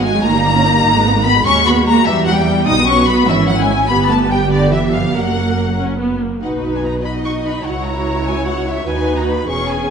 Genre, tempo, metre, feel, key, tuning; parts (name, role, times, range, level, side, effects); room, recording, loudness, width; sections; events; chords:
quick classical-period movement for string orchestra; 98 BPM (dotted quarters); 6/8; straight; B major; A4 = 439 Hz
warm symphonic violin section; melody; 0.0-9.9 s; D5 to D#6; -19 LUFS; left 5 dB
warm symphonic violin section; second line; 0.0-9.9 s; G#4 to D#6; -20 LUFS; left 3 dB
rich studio viola section; accompaniment; 0.0-9.9 s; D#3 to A#4; -19 LUFS; right 2 dB
rich symphonic cello section; bass; 0.0-9.9 s; C#2 to D#4; -20 LUFS; right 3 dB
rich symphonic double bass section; bass; 0.0-9.9 s; E1 to E2; -20 LUFS; right 3 dB
wet scoring stage reverb, RT60 1.9 s; nothing above 10.4 kHz; -13 LUFS; side -6 dB against mid
0.0-6.4 A section; 6.4-9.9 B section
0.2 D#7/G; 0.8 G#m; 1.5 B/D#; 2.1 Em; 2.7 B; 3.3 E/G#; 3.9 G7; 5.2 F#; 6.4 B; 7.7 F#7/C#; 8.9 B/D#